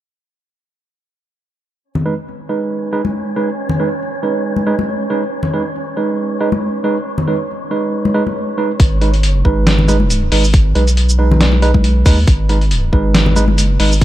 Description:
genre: deep dubstep.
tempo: 138 BPM.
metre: 4/4.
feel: swing 55% on 16ths, half-time.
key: G# minor.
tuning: A4 = 437 Hz.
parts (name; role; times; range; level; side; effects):
wind-like tuned noise texture; texture; 2.6-8.8 s; C#4 to C#5; -25 LUFS; equal; built-in reverb.
congas; percussion; 2.0-13.6 s; none; -20 LUFS; left 2 dB; dub echo.
tine electric piano; stabs; 2.1-13.9 s; G#3 to B4; -18 LUFS; right 3 dB; low-pass filter, dub echo.
saturated sub bass; bass; 8.8-14.0 s; G#1 to D#2; -13 LUFS; equal; none.
electronic kick drum; drums; 8.8-14.0 s; none; -11 LUFS; equal; none.
trip hop sampler-style drum kit; drums; 8.8-14.0 s; hi-hat, shaker, snare drum; -18 LUFS; equal; none.
room: light reverb.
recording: dark, warm production.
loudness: -13 LUFS.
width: side -14 dB against mid.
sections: 1.8-8.8 A section; 8.8-14.0 B section.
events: none.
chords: 1.8 G#m.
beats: | 1.84 2.27 2.71 3.15 | 3.58 4.01 4.45 4.88 | 5.32 5.75 6.19 6.62 | 7.06 7.49 7.93 8.36 | 8.80 9.23 9.67 10.10 | 10.54 10.97 11.40 11.84 | 12.28 12.71 13.14 13.58 | 14.01.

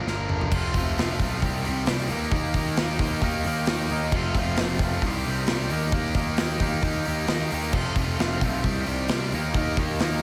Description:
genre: classic rock.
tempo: 133 BPM.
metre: 4/4.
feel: straight.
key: unclear.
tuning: A4 = 440 Hz.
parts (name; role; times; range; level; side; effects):
distorted electric guitar; riff; 0.0-10.2 s; F2 to Bb4; -30 LUFS; equal; overdrive, slapback echo.
fuzz picked electric bass; bass; 0.1-10.2 s; F1 to Eb2; -31 LUFS; equal; overdrive.
big rock drum kit; drums; 0.1-10.1 s; crash cymbal, hi-hat, kick drum, snare drum, toms; -29 LUFS; equal; none.
room: moderate lush hall reverb, RT60 1.8 s, small room reverb.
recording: big arena sound.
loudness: -25 LUFS.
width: mono.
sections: 0.5-10.2 A section.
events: drum fill 0.1-0.5.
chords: 0.0 Bb; 0.5 F; 1.4 Cm; 2.1 Eb; 4.1 F; 5.0 Cm; 5.7 Eb; 7.7 F; 8.6 Cm; 9.3 Eb.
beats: 0.06 | 0.52 0.97 1.42 1.88 | 2.33 2.78 3.23 3.68 | 4.13 4.58 5.04 5.49 | 5.94 6.39 6.84 7.29 | 7.74 8.19 8.64 9.09 | 9.54 9.99.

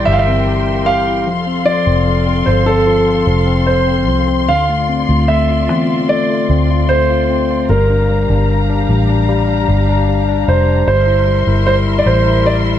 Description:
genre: pop.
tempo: 75 BPM.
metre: 4/4.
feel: straight.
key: D minor.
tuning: A4 = 440 Hz.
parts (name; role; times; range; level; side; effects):
warm concert grand piano; melody; 0.0-12.6 s; A4 to F5; -16 LUFS; right 2 dB; tape echo.
barky tine electric piano; accompaniment; 0.0-12.8 s; D3 to A4; -17 LUFS; left 5 dB; none.
dark studio string section; sustained chords; 0.0-12.8 s; F4 to C6; -22 LUFS; left 2 dB; none.
vintage muted fingered electric bass; bass; 0.0-12.8 s; F1 to E2; -15 LUFS; equal; none.
room: light reverb, small room ambience.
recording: none.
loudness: -11 LUFS.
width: side -10 dB against mid.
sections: 0.0-12.8 A section.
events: none.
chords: 0.0 C7/G; 1.3 F; 4.5 Dm7; 7.7 Gm7; 10.9 C7/G.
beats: 0.48 | 1.28 2.07 2.87 3.68 | 4.49 5.29 6.09 6.90 | 7.70 8.49 9.29 10.08 | 10.88 11.66 12.45.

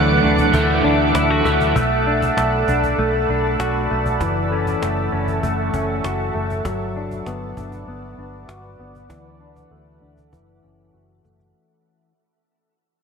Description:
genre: dream pop.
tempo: 98 BPM.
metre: 4/4.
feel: straight.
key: unclear.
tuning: A4 = 440 Hz.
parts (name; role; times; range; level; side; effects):
crunchy overdriven guitar; accompaniment; 0.0-1.8 s; D3 to E4; -24 LUFS; right 3 dB; tremolo, ensemble chorus, low-pass filter, shimmer reverb.
shimmering ambient pad; sustained chords; 0.0-11.5 s; A4 to D6; -21 LUFS; right 2 dB; chorus, built-in reverb, low-pass filter, shimmer reverb.
semi-hollow electric guitar; arpeggios; 0.0-12.1 s; E3 to F#4; -23 LUFS; left 4 dB; analog chorus, low-pass filter, ping-pong delay, shimmer reverb.
vintage muted fingered electric bass; bass; 0.0-11.5 s; F#1 to D2; -24 LUFS; equal; none.
cajon; drums; 0.4-11.5 s; none; -28 LUFS; equal; none.
room: wet lush hall reverb, RT60 1.9 s.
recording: bright 1980s-style digital production.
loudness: -17 LUFS.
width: side -6 dB against mid.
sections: 0.0-11.6 A section.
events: fade-out 0.0-11.6; filter sweep 0.0-11.6.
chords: 0.0 Dadd9; 1.8 Bm7; 4.2 F#m7; 6.7 Gmaj7; 9.1 Dadd9; 10.3 F#m7.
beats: 0.53 1.14 | 1.76 2.37 2.98 3.59 | 4.21 4.82 5.43 6.04 | 6.66 7.27 7.88 8.49 | 9.10 9.72 10.33 10.94.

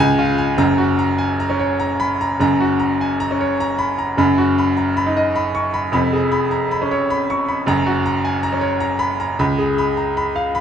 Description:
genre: classical, virtuoso piano study.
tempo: 103 BPM.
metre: 3/4.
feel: rubato.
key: F# major.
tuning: A4 = 443 Hz.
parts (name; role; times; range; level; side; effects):
clear baby grand piano; solo; 0.0-10.6 s; E#1 to C#6; -16 LUFS; equal; none.
room: wet recital hall reverb, RT60 1.4 s.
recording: nothing above 10.5 kHz.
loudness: -16 LUFS.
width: side -8 dB against mid.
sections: 0.0-2.4 A section; 2.4-10.6 B section.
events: none.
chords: 0.0 C#; 0.6 F#; 4.2 B/F#; 5.9 C#7/E#; 7.7 F#; 9.4 C#7.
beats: | 0.59 1.20 1.81 | 2.42 3.02 3.61 | 4.19 4.78 5.36 | 5.94 6.51 7.10 | 7.67 8.24 8.82 | 9.39 9.97 10.54.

